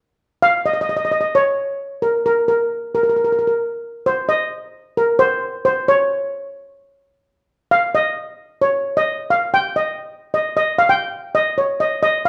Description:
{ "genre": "calypso", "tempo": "132 BPM", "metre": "4/4", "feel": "swing 54% on 16ths", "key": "unclear", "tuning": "A4 = 440 Hz", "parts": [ { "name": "steel pan", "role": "solo", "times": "0.4-12.3 s", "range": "A#4 to G5", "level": "-18 LUFS", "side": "equal", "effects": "none" } ], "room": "moderate large studio reverb, RT60 1.1 s", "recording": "band playing live in one room", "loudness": "-19 LUFS", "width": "mono", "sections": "0.4-12.3 A section", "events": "none", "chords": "none" }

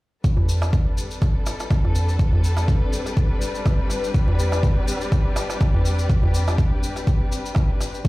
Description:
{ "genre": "afro house", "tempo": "123 BPM", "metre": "4/4", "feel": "swing 55% on 16ths", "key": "A minor", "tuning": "A4 = 440 Hz", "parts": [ { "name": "warm studio string section", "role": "sustained chords", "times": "0.2-8.1 s", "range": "A2 to B4", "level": "-28 LUFS", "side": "left 2 dB", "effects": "sidechain pumping" }, { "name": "electronic kick drum", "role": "drums", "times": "0.2-8.1 s", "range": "none", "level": "-20 LUFS", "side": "equal", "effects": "overdrive" }, { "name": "shaker", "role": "drums", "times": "0.2-8.1 s", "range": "none", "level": "-35 LUFS", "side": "left 2 dB", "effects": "overdrive" }, { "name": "darbuka", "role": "percussion", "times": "0.4-7.9 s", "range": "none", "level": "-23 LUFS", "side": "equal", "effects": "none" }, { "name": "congas", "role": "percussion", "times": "8.1 s", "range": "none", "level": "-25 LUFS", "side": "left 3 dB", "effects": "none" } ], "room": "little or no reverb", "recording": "played on a big sound system in a bare room, large studio reverb", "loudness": "-18 LUFS", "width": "side -20 dB against mid", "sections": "0.2-8.1 A section", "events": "none", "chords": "0.2 Am11" }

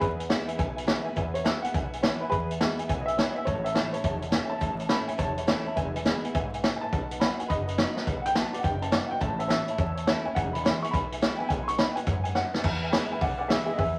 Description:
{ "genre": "rockabilly", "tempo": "209 BPM", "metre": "4/4", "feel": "swing 64% on 8ths", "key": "E major", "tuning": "A4 = 438 Hz", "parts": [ { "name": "warm upright piano", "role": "melody", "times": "0.0-14.0 s", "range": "G#4 to C#6", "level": "-33 LUFS", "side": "equal", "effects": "none" }, { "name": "honky-tonk upright piano", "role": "accompaniment", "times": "0.0-14.0 s", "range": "B4 to B5", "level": "-38 LUFS", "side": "equal", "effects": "none" }, { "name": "picked steel-string acoustic guitar", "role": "accompaniment", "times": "0.0-14.0 s", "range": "E2 to F#4", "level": "-38 LUFS", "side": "equal", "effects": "none" }, { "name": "upright bass", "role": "bass", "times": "0.0-14.0 s", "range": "E1 to F#2", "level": "-36 LUFS", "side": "equal", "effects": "none" }, { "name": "vintage drum kit", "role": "drums", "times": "0.0-13.9 s", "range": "crash cymbal, hi-hat, kick drum, snare drum", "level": "-30 LUFS", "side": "equal", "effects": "none" } ], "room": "moderate studio reverb, RT60 0.8 s", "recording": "vinyl crackle", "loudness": "-28 LUFS", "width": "mono", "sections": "0.0-12.6 A section; 12.6-14.0 B section", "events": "drum fill 7.9, 12.4; upright piano solo 12.6-14.0", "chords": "0.0 E; 3.5 A; 5.8 E; 6.9 B; 9.2 A; 10.4 E; 11.5 B; 12.6 E" }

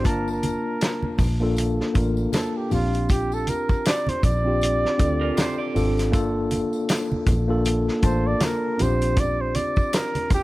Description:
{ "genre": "lush 1970s-style soul", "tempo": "79 BPM", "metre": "4/4", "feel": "swing 58% on 16ths", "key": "Bb major", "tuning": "A4 = 440 Hz", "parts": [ { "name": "breathy flugelhorn", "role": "melody", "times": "0.0-10.4 s", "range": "F4 to D5", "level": "-26 LUFS", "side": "right 2 dB", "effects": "none" }, { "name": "mellow tine electric piano", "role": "accompaniment", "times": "0.0-10.4 s", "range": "Bb3 to A5", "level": "-25 LUFS", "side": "left 1 dB", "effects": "medium stereo tremolo" }, { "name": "vintage muted fingered electric bass", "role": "bass", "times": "0.0-9.6 s", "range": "G1 to D2", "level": "-25 LUFS", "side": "equal", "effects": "none" }, { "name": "congas", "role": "percussion", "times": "0.0-10.4 s", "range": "none", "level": "-32 LUFS", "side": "right 2 dB", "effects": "none" }, { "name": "tambourine", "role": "percussion", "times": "0.0-10.4 s", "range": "none", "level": "-42 LUFS", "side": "left 11 dB", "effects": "none" }, { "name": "warm soul drum kit", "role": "drums", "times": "0.1-10.4 s", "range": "hi-hat, kick drum, snare drum", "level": "-24 LUFS", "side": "equal", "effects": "none" }, { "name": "electric guitar through a small old amp", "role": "riff", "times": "5.2-6.1 s", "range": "F4 to D5", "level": "-34 LUFS", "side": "right 4 dB", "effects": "none" } ], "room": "light reverb, small room ambience", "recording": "none", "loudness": "-20 LUFS", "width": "side -18 dB against mid", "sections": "0.0-10.4 A section", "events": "flugelhorn solo 0.0-10.4", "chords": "0.0 Gm7; 2.7 Bb69; 6.1 Gm7; 8.8 Bb69" }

